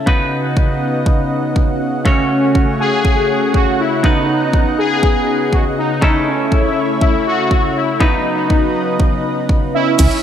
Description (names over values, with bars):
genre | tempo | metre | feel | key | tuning
italo disco | 121 BPM | 4/4 | straight | unclear | A4 = 439 Hz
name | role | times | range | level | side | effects
lush unison pad | sustained chords | 0.0-10.2 s | C#3 to C#6 | -19 LUFS | equal | chorus
direct-recorded clean electric guitar | stabs | 0.0-10.0 s | C#3 to C#5 | -22 LUFS | equal | digital delay
electronic kick drum | drums | 0.1-10.1 s | none | -15 LUFS | equal | none
analog synth brass | melody | 2.1-10.2 s | C#4 to G#4 | -17 LUFS | left 1 dB | chorus, digital delay
chorused synth bass | bass | 10.0-10.1 s | C#2 | -13 LUFS | equal | none
house drum kit | drums | 10.0-10.2 s | cabasa, crash cymbal, hi-hat | -21 LUFS | left 1 dB | low-pass filter on hats, low-pass filter on cymbals, low-pass filter on perc, low-pass filter on room
room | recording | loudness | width
moderate plate reverb, RT60 2.4 s | bright 1980s-style digital production | -13 LUFS | side -9 dB against mid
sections
0.0-10.0 A section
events
none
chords
0.1 B/C#; 2.1 F#m/C#; 4.0 B/C#; 6.0 A/C#; 8.0 B/C#